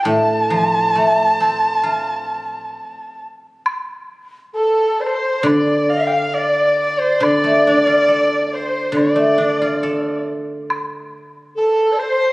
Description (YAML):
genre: chinese traditional, Chinese chamber ensemble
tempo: 68 BPM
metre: 4/4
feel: rubato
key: A jue mode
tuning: A4 = 441 Hz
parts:
  - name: dark erhu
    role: melody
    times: 0.0-12.3 s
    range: A4 to A5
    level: -18 LUFS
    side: right 1 dB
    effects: none
  - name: guzheng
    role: accompaniment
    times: 0.1-11.6 s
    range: A2 to A4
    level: -19 LUFS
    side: equal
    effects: none
  - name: woodblock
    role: percussion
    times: 3.7-10.9 s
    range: none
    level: -25 LUFS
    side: equal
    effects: none
  - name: bright reedy large dizi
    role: second line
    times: 4.5-12.3 s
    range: A4 to F5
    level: -19 LUFS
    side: left 1 dB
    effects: none
room: moderate concert hall reverb, RT60 2.2 s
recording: recorded on a phone in the room, studio reverb, compression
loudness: -15 LUFS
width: side -20 dB against mid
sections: 0.0-3.7 A section; 3.7-12.3 B section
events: none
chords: none